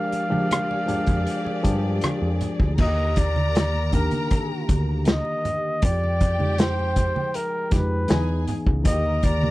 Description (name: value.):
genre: lush 1970s-style soul.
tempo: 79 BPM.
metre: 4/4.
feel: straight.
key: unclear.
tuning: A4 = 440 Hz.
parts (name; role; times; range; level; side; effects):
breathy flugelhorn; melody; 0.0-9.5 s; Bb4 to F5; -27 LUFS; equal; none.
warm symphonic string section; second line; 0.0-9.5 s; G4 to Bb5; -34 LUFS; left 1 dB; none.
tine electric piano; accompaniment; 0.0-9.5 s; D3 to Ab4; -28 LUFS; left 2 dB; none.
mellow French horn section; sustained chords; 0.0-9.5 s; D3 to Bb4; -38 LUFS; right 4 dB; stereo widening.
fingered electric bass; bass; 0.1-9.5 s; Db2 to F3; -24 LUFS; equal; none.
vintage drum kit; drums; 0.1-9.4 s; crash cymbal, hi-hat, kick drum, rim click, snare drum; -22 LUFS; equal; none.
congas; percussion; 0.3-9.5 s; none; -31 LUFS; right 3 dB; none.
room: little or no reverb.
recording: none.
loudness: -20 LUFS.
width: side -18 dB against mid.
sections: 0.0-2.8 A section; 2.8-9.5 B section.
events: none.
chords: 0.0 Fm69; 2.8 Ebmaj7; 5.8 Fm9; 8.1 Emaj7; 8.9 Ebmaj7.